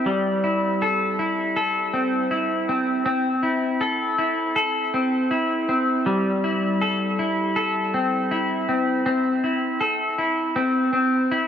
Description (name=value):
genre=dream pop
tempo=80 BPM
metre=4/4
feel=straight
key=A minor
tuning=A4 = 435 Hz
part: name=semi-hollow electric guitar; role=solo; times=0.0-11.5 s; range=G3 to A4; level=-20 LUFS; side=left 1 dB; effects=lush chorus, tape echo
room=wet huge ambient reverb, RT60 4.7 s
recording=dark, warm production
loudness=-20 LUFS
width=side -9 dB against mid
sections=0.0-11.5 A section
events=none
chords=0.1 Am7; 3.1 C6; 6.1 Am7; 9.1 C6; 10.6 C